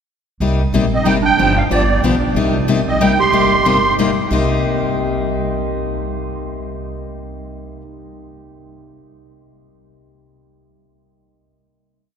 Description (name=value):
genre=acoustic string swing (jazz manouche)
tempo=185 BPM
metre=3/4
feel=swing 59% on 8ths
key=C minor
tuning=A4 = 439 Hz
part: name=picked steel-string acoustic guitar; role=accompaniment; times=0.4-7.8 s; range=C3 to G4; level=-18 LUFS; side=left 3 dB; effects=none
part: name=upright bass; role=bass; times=0.4-7.7 s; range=G1 to C2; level=-22 LUFS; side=right 1 dB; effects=none
part: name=musette accordion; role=melody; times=0.9-3.9 s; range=D5 to C6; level=-18 LUFS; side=right 3 dB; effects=none
part: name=growling clarinet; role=second line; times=0.9-3.9 s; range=B3 to G4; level=-24 LUFS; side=right 4 dB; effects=none
room=wet cathedral reverb, RT60 6.7 s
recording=recorded in a church or concert hall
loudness=-14 LUFS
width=side -7 dB against mid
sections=0.4-4.3 A section; 4.3-6.3 final chord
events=none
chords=0.4 Cm7; 1.4 G7; 2.4 Cm7